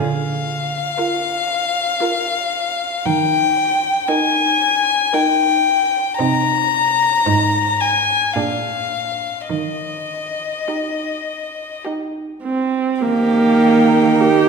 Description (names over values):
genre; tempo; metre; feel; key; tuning
classical, slow romantic movement for string quartet; 49-59 BPM; 3/4; rubato; Eb major; A4 = 438 Hz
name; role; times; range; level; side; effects
warm violin; melody; 0.0-14.5 s; Eb5 to Bb5; -18 LUFS; left 6 dB; none
warm cello; bass; 0.0-14.5 s; Ab2 to Eb3; -22 LUFS; right 6 dB; none
warm violin; second line; 1.0-14.5 s; G4 to C5; -29 LUFS; right 1 dB; none
warm viola; accompaniment; 1.0-14.5 s; Bb3 to G4; -18 LUFS; right 3 dB; none
room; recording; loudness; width
wet recital hall reverb, RT60 1.7 s; recorded in a church or concert hall; -15 LUFS; side -4 dB against mid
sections
0.0-13.0 A section; 13.0-14.5 B section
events
none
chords
0.0 Bb/D; 3.0 Eb; 6.2 Cm7; 7.3 Ab; 8.4 Bb7; 9.5 Eb